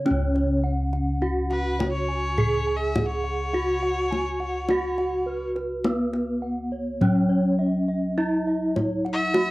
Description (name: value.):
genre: Javanese gamelan.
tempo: 52 BPM.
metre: 4/4.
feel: straight.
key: C# slendro.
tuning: A4 = 440 Hz.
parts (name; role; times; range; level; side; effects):
gamelan-type bronze metallophone; melody; 0.0-9.5 s; B3-25c to G#4; -26 LUFS; equal; cassette tape.
gamelan-type bronze metallophone; arpeggios; 0.0-9.5 s; B4-25c to G#5; -32 LUFS; right 2 dB; cassette tape.
gamelan-type bossed gongs; bass; 0.0-9.5 s; C#2 to F#4; -26 LUFS; equal; none.
kendang; percussion; 0.1-9.5 s; none; -27 LUFS; left 1 dB; none.
bright erhu; second line; 1.5-9.5 s; B4-24c to E5-43c; -30 LUFS; left 1 dB; cassette tape.
room: moderate studio reverb, RT60 0.6 s.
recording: home recording on cassette.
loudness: -22 LUFS.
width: side -19 dB against mid.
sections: 0.1-9.5 A section.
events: none.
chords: none.